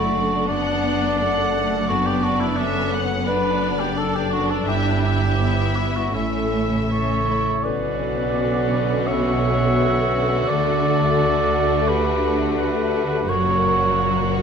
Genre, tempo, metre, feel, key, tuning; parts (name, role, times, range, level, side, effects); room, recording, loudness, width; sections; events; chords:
cinematic, emotional film score for orchestra; 85 BPM; 4/4; rubato; A4 = 440 Hz
warm studio violin section; melody; 0.0-14.4 s; F#4 to F#5; -30 LUFS; left 3 dB
mellow oboe; second line; 0.0-14.4 s; D4 to E5; -23 LUFS; right 2 dB
rich studio violin section; second line; 0.0-14.4 s; A3 to E4; -29 LUFS; left 2 dB
rich studio viola section; accompaniment; 0.0-14.4 s; D3 to D4; -28 LUFS; equal
concert harp; arpeggios; 0.0-14.4 s; F#2 to C#6; -28 LUFS; left 13 dB
rich studio cello section; bass; 0.0-14.4 s; F#2 to D3; -26 LUFS; right 3 dB
rich studio double bass section; bass; 0.0-14.4 s; F#1 to D2; -27 LUFS; right 3 dB
warm clarinet; second line; 6.9-14.4 s; G4 to C#5; -28 LUFS; equal
warm French horn section; sustained chords; 7.6-14.4 s; A#2 to F#4; -27 LUFS; left 4 dB
light reverb; close, detailed microphones; -18 LUFS; side -6 dB against mid
0.0-7.6 A section; 7.6-14.4 B section
0.0 D/F#; 4.7 Em7/G; 6.1 A; 7.6 Bmadd9; 10.5 D; 13.3 F#